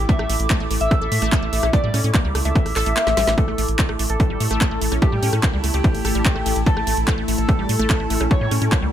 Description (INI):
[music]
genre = psychedelic trance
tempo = 146 BPM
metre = 4/4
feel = straight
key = A major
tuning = A4 = 440 Hz
[part]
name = round analog bass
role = bass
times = 0.0-8.9 s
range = A1 to A2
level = -22 LUFS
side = equal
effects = tube saturation
[part]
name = airy breathy pad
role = texture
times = 0.0-8.9 s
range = E4 to D6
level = -29 LUFS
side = right 2 dB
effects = chorus, sidechain pumping
[part]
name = overdriven synth lead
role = melody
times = 0.1-8.6 s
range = G4 to E5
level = -26 LUFS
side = left 1 dB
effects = distortion, chorus, phaser, sidechain pumping, ping-pong delay
[part]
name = wide unison pluck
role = riff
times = 0.1-8.9 s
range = G3 to A4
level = -27 LUFS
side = right 2 dB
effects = auto-pan, sidechain pumping, ping-pong delay
[part]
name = drum and bass drum kit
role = drums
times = 0.1-8.8 s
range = handclaps, hi-hat, rim click, snare drum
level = -26 LUFS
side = equal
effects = overdrive
[part]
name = electronic kick drum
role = drums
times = 0.1-8.8 s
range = none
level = -18 LUFS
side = equal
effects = none
[part]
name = evolving wavetable pad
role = sustained chords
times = 4.4-8.9 s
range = A3 to E4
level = -29 LUFS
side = left 3 dB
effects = phaser, built-in reverb, sidechain pumping
[sound]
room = little or no reverb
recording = none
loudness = -17 LUFS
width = side -10 dB against mid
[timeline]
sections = 0.0-8.9 A section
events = kick drops out 3.0-3.4; drum fill 3.1-3.4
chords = 0.0 A5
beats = | 0.09 0.50 0.91 1.32 | 1.73 2.14 2.56 2.97 | 3.38 3.79 4.20 4.61 | 5.02 5.43 5.84 6.25 | 6.67 7.08 7.49 7.90 | 8.31 8.72